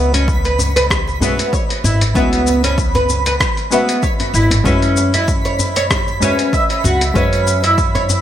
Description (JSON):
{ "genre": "organic downtempo", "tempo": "96 BPM", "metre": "4/4", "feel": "swing 54% on 16ths", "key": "C# minor", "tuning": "A4 = 440 Hz", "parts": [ { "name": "deep mellow chord stab", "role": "accompaniment", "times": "0.0-8.2 s", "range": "G#3 to E5", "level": "-23 LUFS", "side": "left 4 dB", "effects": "chorus, sidechain pumping, digital delay" }, { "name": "oud", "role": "arpeggios", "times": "0.0-8.1 s", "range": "B3 to E5", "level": "-17 LUFS", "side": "right 1 dB", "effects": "digital delay" }, { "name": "upright bass", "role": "bass", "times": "0.0-8.2 s", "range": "G#1 to F#2", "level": "-18 LUFS", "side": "equal", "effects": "sidechain pumping" }, { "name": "twinkling granular texture", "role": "texture", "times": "0.0-8.2 s", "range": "B5", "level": "-25 LUFS", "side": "right 2 dB", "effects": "built-in reverb" }, { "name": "dusty soul sampler-style drum kit", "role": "drums", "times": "0.1-8.2 s", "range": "hi-hat, rim click, shaker", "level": "-21 LUFS", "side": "left 2 dB", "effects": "none" }, { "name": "djembe", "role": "percussion", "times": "0.1-8.2 s", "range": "none", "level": "-23 LUFS", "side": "left 1 dB", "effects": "none" }, { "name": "electronic kick drum", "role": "drums", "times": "0.3-7.9 s", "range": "none", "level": "-19 LUFS", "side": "equal", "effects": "overdrive" } ], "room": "light reverb", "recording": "none", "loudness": "-13 LUFS", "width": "side -11 dB against mid", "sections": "0.0-8.2 A section", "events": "none", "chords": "0.0 C#m7; 4.7 F#7(no3)" }